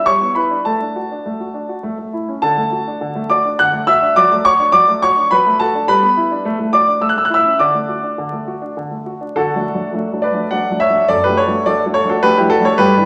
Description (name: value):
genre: classical-period piano sonatina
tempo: 104 BPM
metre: 3/4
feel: rubato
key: D major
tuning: A4 = 441 Hz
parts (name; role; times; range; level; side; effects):
- warm grand piano; solo; 0.0-13.1 s; F#2 to F#6; -16 LUFS; equal; none
room: wet recital hall reverb, RT60 1.4 s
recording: vinyl crackle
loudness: -15 LUFS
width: mono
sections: 0.0-9.3 A section; 9.3-13.1 A section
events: none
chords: 0.0 Em7/G; 0.6 D/A; 1.8 A; 2.4 D; 4.2 D/F#; 5.9 Em7/G; 6.4 D/A; 7.0 A; 7.6 D; 11.1 D/F#